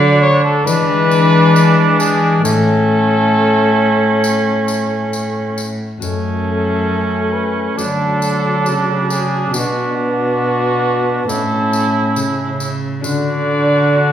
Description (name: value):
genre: classical, renaissance-style consort dance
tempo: 68 BPM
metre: 4/4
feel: straight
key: A major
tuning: A4 = 436 Hz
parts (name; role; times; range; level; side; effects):
- warm cornet; melody; 0.0-14.1 s; F#4 to D5; -19 LUFS; left 2 dB; none
- warm cor anglais; second line; 0.0-14.1 s; C#4 to F#4; -19 LUFS; right 4 dB; none
- concert harp; accompaniment; 0.0-14.1 s; F#2 to D5; -22 LUFS; left 5 dB; none
- warm trombone; accompaniment; 0.0-14.1 s; F#3 to D4; -20 LUFS; left 1 dB; none
- rich cello; bass; 0.0-14.1 s; F#2 to E3; -18 LUFS; right 1 dB; none
- tambourine; percussion; 0.7-13.4 s; none; -29 LUFS; left 4 dB; none
room: wet recital hall reverb, RT60 1.3 s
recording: recorded in a church or concert hall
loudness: -13 LUFS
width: side -10 dB against mid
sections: 0.0-6.0 A section; 6.0-14.1 B section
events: none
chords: 0.0 D; 0.7 E7; 2.4 A; 6.0 F#m; 7.8 D; 9.5 Bm; 11.3 A; 13.0 D